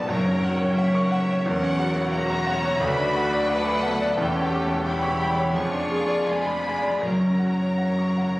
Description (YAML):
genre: classical, romantic movement for piano and orchestra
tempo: 77-90 BPM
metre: 4/4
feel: rubato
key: unclear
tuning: A4 = 440 Hz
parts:
  - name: clear concert grand piano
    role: melody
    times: 0.0-8.4 s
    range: B1 to C#6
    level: -23 LUFS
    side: equal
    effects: none
  - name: rich studio violin section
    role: melody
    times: 0.0-8.4 s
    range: E5 to C#6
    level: -32 LUFS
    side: left 1 dB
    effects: none
  - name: rich studio violin section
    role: second line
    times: 0.0-8.4 s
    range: F4 to C#5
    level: -31 LUFS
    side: left 1 dB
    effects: none
  - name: rich studio viola section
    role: accompaniment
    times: 0.0-8.4 s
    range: E3 to E4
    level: -33 LUFS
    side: right 1 dB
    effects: none
  - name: rich studio cello section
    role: bass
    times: 0.0-8.4 s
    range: D2 to F#2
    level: -31 LUFS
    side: equal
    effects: none
  - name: rich studio double bass section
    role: bass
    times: 0.0-8.4 s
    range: E1 to D2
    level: -33 LUFS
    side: right 1 dB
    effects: none
  - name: timpani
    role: percussion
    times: 0.1-1.1, 7.0-8.1 s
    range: F#2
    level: -39 LUFS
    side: equal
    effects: none
room: wet scoring stage reverb, RT60 1.7 s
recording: recorded on a phone in the room, club reverb, compression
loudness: -21 LUFS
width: side -19 dB against mid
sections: 0.0-8.4 A section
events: none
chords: 0.1 F#; 1.4 F#7/E; 2.8 Bm/D; 4.2 C#dim/E; 5.5 Fdim7; 7.0 F#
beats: 0.08 0.76 | 1.44 2.12 2.81 3.50 | 4.17 4.85 5.53 6.25 | 7.00 7.77